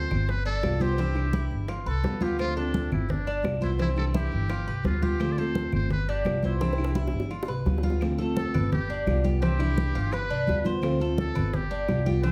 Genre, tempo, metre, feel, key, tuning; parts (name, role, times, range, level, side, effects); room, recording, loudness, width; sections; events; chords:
latin, Cuban son and guajira; 171 BPM; 4/4; straight; A4 = 440 Hz
trumpet with metal mute; melody; 0.0-12.3 s; D4 to D5; -37 LUFS; equal; plate reverb
picked steel-string acoustic guitar; accompaniment; 0.0-12.3 s; C3 to F4; -33 LUFS; equal
Cuban tres; arpeggios; 0.0-12.3 s; C4 to C5; -36 LUFS; equal
upright bass; bass; 0.0-12.3 s; G1 to D2; -30 LUFS; equal
bongos; percussion; 0.1-12.3 s; -41 LUFS; equal
claves; percussion; 0.1-12.1 s; -51 LUFS; equal
congas; percussion; 0.1-12.3 s; -33 LUFS; equal
moderate large studio reverb, RT60 0.9 s; heard from further back in the room; -27 LUFS; mono
0.0-8.0 A section; 8.0-12.3 B section
drum fill 6.6-8.0
0.3 G7; 1.0 Cadd9; 1.7 G7; 2.4 Dm7; 3.1 G7; 3.8 Cadd9; 4.5 G7; 5.2 Dm7; 5.9 G7; 6.6 Cadd9; 7.3 G7; 8.0 Dm7; 8.7 G7; 9.4 Cadd9; 10.1 G7; 10.8 Dm7; 11.5 G7